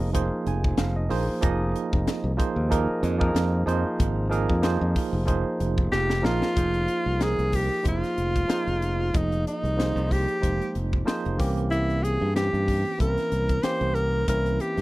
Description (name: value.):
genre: electric jazz fusion.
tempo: 93 BPM.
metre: 4/4.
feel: swing 55% on 16ths.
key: F minor.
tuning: A4 = 440 Hz.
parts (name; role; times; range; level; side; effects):
barky tine electric piano; accompaniment; 0.0-14.8 s; E3 to Ab5; -28 LUFS; right 3 dB; medium stereo tremolo.
modern bright fingered electric bass; bass; 0.0-14.8 s; F1 to G2; -26 LUFS; equal; none.
crisp fusion drum kit; drums; 0.1-14.8 s; hi-hat, kick drum, snare drum; -28 LUFS; equal; none.
bright alto saxophone; melody; 5.9-14.8 s; Eb4 to C5; -26 LUFS; equal; none.
room: little or no reverb.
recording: none.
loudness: -22 LUFS.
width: side -18 dB against mid.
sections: 0.0-6.6 A section; 6.6-14.8 B section.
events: tine electric piano fill 0.1-1.4; drum fill 5.9-6.6.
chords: 0.0 Fm7; 11.4 C7b9.